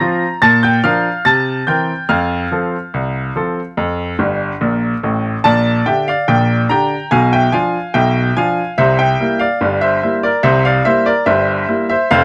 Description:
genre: ragtime piano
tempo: 72 BPM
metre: 2/4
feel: straight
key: unclear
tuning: A4 = 441 Hz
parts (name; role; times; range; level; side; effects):
- bright baby grand piano; solo; 0.0-12.2 s; F1 to Bb6; -15 LUFS; equal; none
room: light reverb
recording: close, detailed microphones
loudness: -15 LUFS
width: mono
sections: 0.0-5.5 A section; 5.5-12.2 B section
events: grand piano fill 4.2-5.5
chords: 0.4 Bb; 1.3 C7; 2.1 F; 5.5 Gm/Bb; 7.1 Bdim; 8.8 C7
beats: | 0.42 1.26 | 2.10 2.94 | 3.77 4.61 | 5.45 6.29 | 7.12 7.95 | 8.79 9.62 | 10.45 11.28 | 12.11

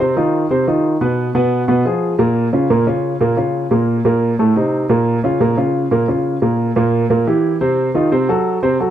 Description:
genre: jazz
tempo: 177 BPM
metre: 4/4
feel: straight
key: unclear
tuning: A4 = 440 Hz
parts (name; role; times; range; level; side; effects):
- warm upright piano; solo; 0.0-8.9 s; A2 to C5; -14 LUFS; right 1 dB; none
room: moderate small room reverb, RT60 0.5 s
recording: dark, warm production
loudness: -14 LUFS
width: side -10 dB against mid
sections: 0.0-8.9 A section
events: none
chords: 0.0 F5; 1.0 N.C.; 1.7 Abm69; 2.4 Bbm; 3.7 N.C.; 4.4 Adim; 5.1 Bbm; 6.4 N.C.; 7.1 C7; 7.8 F5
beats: 0.33 0.67 | 1.00 1.34 1.68 2.02 | 2.36 2.69 3.03 3.37 | 3.71 4.05 4.39 4.72 | 5.06 5.40 5.74 6.08 | 6.42 6.76 7.10 7.43 | 7.77 8.11 8.45 8.79

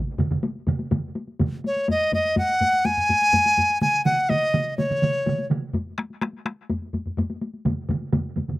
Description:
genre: japanese traditional, taiko drum ensemble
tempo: 125 BPM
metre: 4/4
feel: straight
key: unclear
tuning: A4 = 440 Hz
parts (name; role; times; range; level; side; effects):
- solo taiko drums; percussion; 0.1-8.5 s; none; -29 LUFS; left 3 dB; none
- taiko ensemble; percussion; 0.2-8.6 s; none; -29 LUFS; left 1 dB; none
- taiko ensemble; percussion; 0.2-8.6 s; none; -25 LUFS; right 3 dB; none
- bright dizi; melody; 1.7-5.5 s; Db5 to Ab5; -19 LUFS; equal; slapback echo
room: little or no reverb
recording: recorded outdoors, with no room sound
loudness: -20 LUFS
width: side -18 dB against mid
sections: 0.0-1.9 A section; 1.9-8.6 B section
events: none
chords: none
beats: 0.44 0.92 1.40 | 1.89 2.37 2.85 3.33 | 3.81 4.30 4.78 5.26 | 5.74 6.22 6.70 7.17 | 7.65 8.13

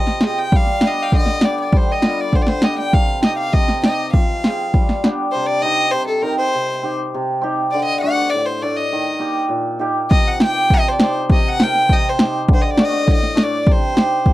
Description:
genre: klezmer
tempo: 100 BPM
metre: 2/4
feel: straight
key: C dorian sharp4 from 5.3 s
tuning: A4 = 439 Hz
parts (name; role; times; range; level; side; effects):
- clear violin; melody; 0.0-14.3 s; A4 to G5; -20 LUFS; left 2 dB; none
- hammered dulcimer; accompaniment; 0.0-14.3 s; A2 to Bb4; -20 LUFS; right 1 dB; none
- punchy analog drum machine; drums; 0.1-5.2, 10.1-14.3 s; kick drum, snare drum; -14 LUFS; equal; overdrive
room: light reverb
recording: dry, close 1970s-style studio recording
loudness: -15 LUFS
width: side -16 dB against mid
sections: 0.0-5.3 A section; 5.3-14.3 B section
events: none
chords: 0.0 Fm; 0.5 G; 2.9 Cm; 4.1 Fm; 4.7 G7; 5.3 Cm; 7.7 D; 8.9 Eb; 10.1 Cm; 12.5 D5; 13.7 Cm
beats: | 0.53 1.13 | 1.73 2.33 | 2.93 3.54 | 4.14 4.74 | 5.33 5.93 | 6.53 7.13 | 7.73 8.32 | 8.92 9.51 | 10.11 10.70 | 11.30 11.89 | 12.48 13.08 | 13.67 14.26

